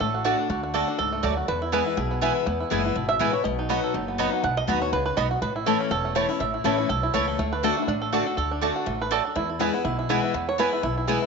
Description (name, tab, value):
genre	bluegrass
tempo	244 BPM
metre	4/4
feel	swing 55% on 8ths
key	unclear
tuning	A4 = 440 Hz
part	bluegrass banjo	melody	0.0-11.3 s	A3 to F#5	-26 LUFS	right 4 dB	none
part	picked steel-string acoustic guitar	accompaniment	0.0-11.3 s	E2 to F#4	-28 LUFS	left 13 dB	none
part	upright bass	bass	0.0-11.2 s	E1 to E2	-30 LUFS	equal	none
part	mandolin	stabs	0.2-11.2 s	A3 to B5	-29 LUFS	right 10 dB	none
room	moderate echo chamber reverb, RT60 2.4 s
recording	1960s-style stereo with parts hard left and right, nothing above 7.6 kHz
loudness	-22 LUFS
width	side -4 dB against mid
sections	0.0-7.4 A section; 7.4-11.3 A section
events	five-string banjo solo 0.0-11.3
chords	0.0 D; 1.5 E; 3.4 B; 5.4 A; 7.4 D; 9.4 E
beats	0.00 0.25 | 0.49 0.74 0.99 1.23 | 1.48 1.73 1.97 2.22 | 2.46 2.71 2.96 3.20 | 3.45 3.69 3.94 4.19 | 4.43 4.68 4.93 5.17 | 5.42 5.66 5.91 6.16 | 6.40 6.65 6.89 7.14 | 7.39 7.63 7.88 8.13 | 8.37 8.62 8.87 9.11 | 9.36 9.61 9.85 10.10 | 10.34 10.59 10.84 11.08